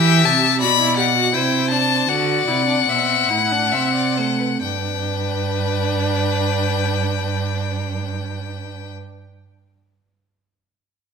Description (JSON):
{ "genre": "classical, baroque-style fugue for string quartet", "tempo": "64-86 BPM", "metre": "3/4", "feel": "straight", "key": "G major", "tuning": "A4 = 440 Hz", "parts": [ { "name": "clear violin", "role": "melody", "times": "0.0-8.9 s", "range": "F#5 to B5", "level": "-20 LUFS", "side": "left 9 dB", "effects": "none" }, { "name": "rich violin", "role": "second line", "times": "0.0-8.9 s", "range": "B4 to F#5", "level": "-26 LUFS", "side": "left 5 dB", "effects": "none" }, { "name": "warm viola", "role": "accompaniment", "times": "0.0-8.9 s", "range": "A3 to G4", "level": "-26 LUFS", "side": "right 3 dB", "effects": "none" }, { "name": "dark cello", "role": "bass", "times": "0.0-8.9 s", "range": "G2 to E3", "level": "-22 LUFS", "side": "right 4 dB", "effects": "none" } ], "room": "moderate recital hall reverb, RT60 1.6 s", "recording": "minimal, uncompressed stereo recording", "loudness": "-16 LUFS", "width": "side -6 dB against mid", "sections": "0.0-4.6 A section; 4.6-10.2 B section", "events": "slowing down 0.0-4.6", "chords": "0.0 Em; 1.3 Am7/C; 2.1 D7; 4.6 G" }